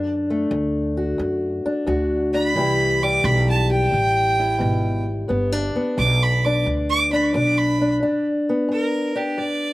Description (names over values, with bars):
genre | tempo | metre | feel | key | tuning
acoustic country blues, solo or duo | 88 BPM | 4/4 | swing 68% on 8ths | G major | A4 = 439 Hz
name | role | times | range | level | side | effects
fingerpicked old ladder-braced acoustic guitar | accompaniment | 0.0-9.7 s | D2 to G4 | -21 LUFS | left 1 dB | none
upright bass | bass | 0.0-8.0 s | G1 to F#2 | -23 LUFS | right 1 dB | none
bright fiddle | melody | 2.3-9.7 s | G4 to D6 | -22 LUFS | right 2 dB | slapback echo
room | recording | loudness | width
little or no reverb | recorded outdoors, with no room sound | -18 LUFS | side -18 dB against mid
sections
0.0-8.0 A section; 8.0-9.7 A section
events
fiddle solo 0.0-8.0, 8.0-9.7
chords
0.0 D; 2.6 C; 5.3 G